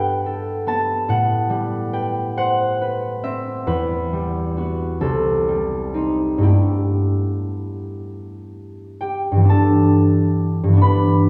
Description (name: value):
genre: classical, solo harp piece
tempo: 36-48 BPM (dotted quarters)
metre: 6/8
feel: rubato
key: G major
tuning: A4 = 441 Hz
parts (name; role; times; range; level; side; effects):
- concert harp; solo; 0.0-11.3 s; C2 to B5; -20 LUFS; equal; none
room: wet scoring stage reverb, RT60 1.9 s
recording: heard from further back in the room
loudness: -19 LUFS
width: mono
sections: 0.0-9.5 A section; 9.5-11.3 B section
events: none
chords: 0.0 Gadd9; 1.1 Am9; 3.7 Emadd9; 5.0 Cm6; 6.4 G69